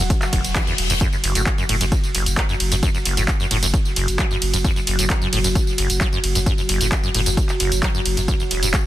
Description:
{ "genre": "driving peak-time techno", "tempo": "132 BPM", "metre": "4/4", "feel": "straight", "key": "unclear", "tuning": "A4 = 441 Hz", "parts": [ { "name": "acid bass, saw", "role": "riff", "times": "0.0-8.7 s", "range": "E1 to F#3", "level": "-25 LUFS", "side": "equal", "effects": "lush chorus, sidechain pumping, tape echo" }, { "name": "saturated sub bass", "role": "bass", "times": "0.0-8.7 s", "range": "E1 to F#1", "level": "-23 LUFS", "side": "equal", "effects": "overdrive, sidechain pumping, low-pass filter" }, { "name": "analog drone", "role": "drone", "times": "0.0-8.9 s", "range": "F#3 to F#4", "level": "-28 LUFS", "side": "right 1 dB", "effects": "chorus, sidechain pumping" }, { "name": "electronic kick drum", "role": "drums", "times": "0.1-8.8 s", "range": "none", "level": "-20 LUFS", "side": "equal", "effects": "none" }, { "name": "punchy analog drum machine", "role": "drums", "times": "0.1-8.8 s", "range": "handclaps, hi-hat, ride cymbal, tambourine", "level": "-23 LUFS", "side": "right 1 dB", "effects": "sidechain pumping on hats, sidechain pumping on perc, sidechain pumping on cymbals" }, { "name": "reverse cymbal", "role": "sound effects", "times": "0.3-1.0 s", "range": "none", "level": "-28 LUFS", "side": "left 6 dB", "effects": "none" } ], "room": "little or no reverb", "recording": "dense, heavily limited modern master", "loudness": "-17 LUFS", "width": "side -14 dB against mid", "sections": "0.0-8.9 A section", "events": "reverse cymbal 0.3-1.0", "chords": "none" }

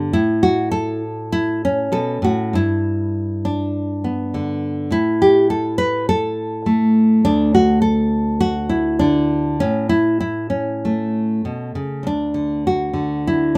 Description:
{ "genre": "folk, solo fingerstyle acoustic guitar", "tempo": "100 BPM", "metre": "4/4", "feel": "rubato", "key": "unclear", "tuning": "A4 = 441 Hz", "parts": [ { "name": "nylon-string guitar", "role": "solo", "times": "0.0-13.6 s", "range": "D2 to B4", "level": "-19 LUFS", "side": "equal", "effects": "none" } ], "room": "moderate studio ambience, RT60 0.5 s", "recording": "none", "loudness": "-19 LUFS", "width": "mono", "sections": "0.0-12.1 A section; 12.1-13.6 B section", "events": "none", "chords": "0.1 A; 2.5 G; 4.9 N.C.; 9.6 A; 12.1 N.C." }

